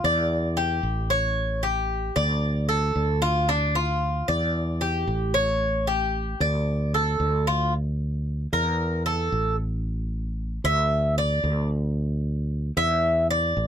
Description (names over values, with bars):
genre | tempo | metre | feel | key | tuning
latin, Cuban son and guajira | 113 BPM | 4/4 | straight | D minor | A4 = 439 Hz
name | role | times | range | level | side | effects
Cuban tres | arpeggios | 0.0-13.7 s | D4 to E5 | -24 LUFS | equal | none
fretless electric bass | bass | 0.0-13.7 s | A1 to E2 | -25 LUFS | equal | none
room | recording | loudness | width
little or no reverb | close, detailed microphones | -22 LUFS | side -8 dB against mid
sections
0.0-7.7 A section; 7.7-13.7 B section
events
Cuban tres solo 7.7-13.7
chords
0.3 A7; 2.4 Dm; 4.5 A7; 6.7 Dm; 7.7 Dsus2; 8.8 A5; 9.9 Asus4; 10.9 Dsus2; 13.0 Asus4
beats
0.31 0.84 | 1.37 1.90 2.43 2.96 | 3.49 4.02 4.55 5.08 | 5.61 6.14 6.67 7.20 | 7.73 8.26 8.79 9.32 | 9.85 10.38 10.91 11.44 | 11.97 12.51 13.04 13.56